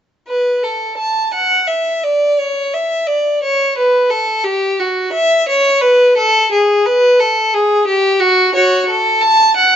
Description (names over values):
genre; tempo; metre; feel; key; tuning
classical, baroque-style suite movement for unaccompanied violin; 87 BPM; 3/4; rubato; unclear; A4 = 440 Hz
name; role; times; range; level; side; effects
clear violin; solo; 0.3-9.8 s; F#4 to A5; -11 LUFS; equal; none
room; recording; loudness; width
moderate stone room reverb, RT60 1.1 s; nothing above 7.9 kHz; -11 LUFS; side -9 dB against mid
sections
0.3-9.8 A section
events
none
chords
none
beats
| 0.27 0.97 1.68 | 2.38 3.07 3.77 | 4.46 5.15 5.84 | 6.52 7.20 7.87 | 8.54 9.22